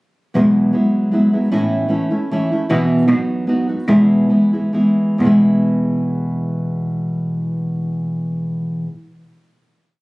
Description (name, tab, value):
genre	mexican folk, mariachi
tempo	128-155 BPM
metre	3/4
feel	swing 53% on 8ths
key	E major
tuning	A4 = 438 Hz
part	nylon-string guitar	accompaniment	0.3-8.9 s	E2 to F#4	-15 LUFS	equal	none
part	warm cello	bass	0.4-5.3 s	E2 to B2	-22 LUFS	right 1 dB	none
room	moderate recital hall reverb, RT60 1.5 s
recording	recorded on a phone in the room, studio ambience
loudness	-15 LUFS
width	side -22 dB against mid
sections	0.4-5.2 A section; 5.2-8.0 final chord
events	slowing down 2.7-5.2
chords	0.4 Eadd9; 1.5 A; 2.7 Bsus4; 3.1 B; 3.9 E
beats	| 0.35 0.75 1.14 | 1.53 1.92 2.31 | 2.69 3.08 3.48 | 3.88 4.30 4.74 | 5.21 5.67 6.13 | 6.59 7.05 7.52